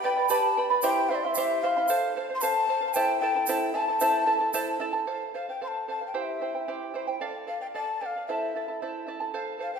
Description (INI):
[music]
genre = andean folk, Andean ensemble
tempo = 113 BPM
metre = 2/4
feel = straight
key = A minor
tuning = A4 = 440 Hz
[part]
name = breathy large quena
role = melody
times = 0.0-9.8 s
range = D5 to C6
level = -27 LUFS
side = left 3 dB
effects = none
[part]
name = charango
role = accompaniment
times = 0.0-9.8 s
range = E4 to C6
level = -28 LUFS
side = right 4 dB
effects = none
[part]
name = egg shaker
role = percussion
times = 0.3-4.7 s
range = none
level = -34 LUFS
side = right 5 dB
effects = none
[sound]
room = wet scoring stage reverb, RT60 2.0 s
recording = minimal, uncompressed stereo recording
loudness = -25 LUFS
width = side -6 dB against mid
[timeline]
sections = 0.0-5.1 A section; 5.1-9.8 B section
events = none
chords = 0.0 G; 0.8 C; 1.9 F; 2.9 Am; 5.1 F; 6.1 C; 7.2 Dm; 8.3 Am